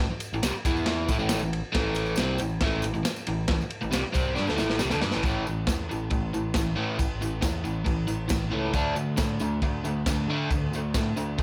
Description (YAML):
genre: garage rock duo or trio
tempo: 137 BPM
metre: 4/4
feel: straight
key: unclear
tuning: A4 = 438 Hz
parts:
  - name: overdriven electric guitar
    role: riff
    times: 0.0-11.4 s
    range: A2 to E4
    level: -30 LUFS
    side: equal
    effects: none
  - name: growling picked electric bass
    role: bass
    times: 0.0-11.4 s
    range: A1 to D3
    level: -35 LUFS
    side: equal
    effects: overdrive
  - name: crunchy breakbeat drum kit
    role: drums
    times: 0.2-11.4 s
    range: crash cymbal, kick drum, ride cymbal, snare drum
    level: -31 LUFS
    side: equal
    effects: none
  - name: tambourine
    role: percussion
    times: 0.2-11.4 s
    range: none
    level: -45 LUFS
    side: equal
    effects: none
room: small room ambience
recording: none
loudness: -27 LUFS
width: mono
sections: 0.0-5.2 A section; 5.2-11.4 B section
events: drum fill 4.4-5.2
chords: 0.0 A5; 0.6 E5; 1.1 A5; 8.8 D5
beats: 0.43 0.87 1.30 | 1.74 2.17 2.61 3.05 | 3.49 3.92 4.36 4.80 | 5.24 5.68 6.12 6.55 | 6.99 7.43 7.87 8.31 | 8.75 9.19 9.63 10.07 | 10.51 10.95 11.38